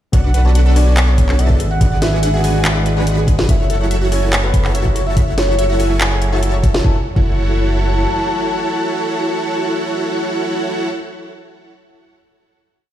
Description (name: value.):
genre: future bass.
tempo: 143 BPM.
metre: 4/4.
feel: half-time.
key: F# minor.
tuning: A4 = 443 Hz.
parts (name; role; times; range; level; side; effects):
soft octave-layered synth lead; melody; 0.1-10.9 s; B4 to A5; -24 LUFS; left 1 dB; chorus, phaser, sidechain pumping, dub echo.
tine electric piano; accompaniment; 0.1-10.9 s; F#3 to G#5; -26 LUFS; left 1 dB; overdrive, fast stereo tremolo, sidechain pumping, digital delay.
wide unison pluck; arpeggios; 0.1-7.3 s; E4 to A5; -28 LUFS; equal; sidechain pumping, digital delay.
dense compressed supersaw; riff; 0.1-10.9 s; D4 to B5; -21 LUFS; right 1 dB; sidechain pumping, digital delay.
saturated sub bass; bass; 0.1-8.1 s; F#1 to B1; -16 LUFS; equal; sidechain pumping.
electronic kick drum; drums; 0.1-7.3 s; none; -14 LUFS; equal; studio ambience.
trap drum kit; drums; 0.1-6.8 s; handclaps, hi-hat, snare drum; -21 LUFS; equal; studio ambience.
room: light reverb, digital ambience.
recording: played on a big sound system in a bare room, large studio reverb.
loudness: -13 LUFS.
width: side -12 dB against mid.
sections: 0.1-6.8 drop; 6.8-10.2 final chord.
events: drop 0.1-6.8.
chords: 0.1 Bm7; 1.6 G#m7b5; 3.5 F#m7.